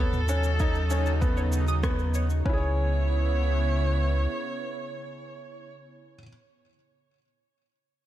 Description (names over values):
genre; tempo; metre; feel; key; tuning
piano and strings electronica; 97 BPM; 4/4; straight; C# minor; A4 = 441 Hz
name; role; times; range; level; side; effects
warm viola; melody; 0.0-5.7 s; A4 to C#5; -34 LUFS; right 2 dB; digital delay
lush unison pad; sustained chords; 0.1-5.7 s; C#3 to E4; -34 LUFS; right 1 dB; chorus, sidechain pumping
felt-muted upright piano; riff; 0.0-6.3 s; B3 to C#5; -34 LUFS; left 2 dB; digital delay
warm sub bass; bass; 0.0-4.3 s; C#2 to D#2; -25 LUFS; equal; sidechain pumping
minimal click drum kit; drums; 0.1-2.4 s; rim click, shaker, toms; -38 LUFS; right 2 dB; overdrive, studio ambience
analog pluck; arpeggios; 0.3-2.7 s; B4 to D#6; -39 LUFS; right 2 dB; chorus, phaser, sidechain pumping, digital delay
electronic kick drum; drums; 0.6-2.6 s; none; -27 LUFS; equal; studio ambience
room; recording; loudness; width
little or no reverb; none; -24 LUFS; side -13 dB against mid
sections
0.0-2.5 A section; 2.5-4.9 B section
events
drop 0.0-2.5; band accent 1.8-2.1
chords
0.0 D#m7b5; 2.5 C#m7